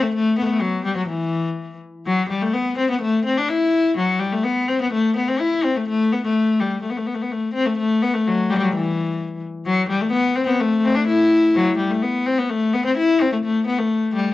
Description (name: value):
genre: medieval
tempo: 127 BPM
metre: 2/4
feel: straight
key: A dorian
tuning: A4 = 440 Hz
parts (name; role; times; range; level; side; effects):
- clear viola da gamba; solo; 0.0-14.3 s; E3 to E4; -18 LUFS; left 3 dB; cassette tape
room: moderate studio reverb, RT60 0.6 s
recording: home recording on cassette, nothing above 7.8 kHz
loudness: -18 LUFS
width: side -15 dB against mid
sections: 0.2-7.8 A section; 7.8-14.3 A section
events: none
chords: none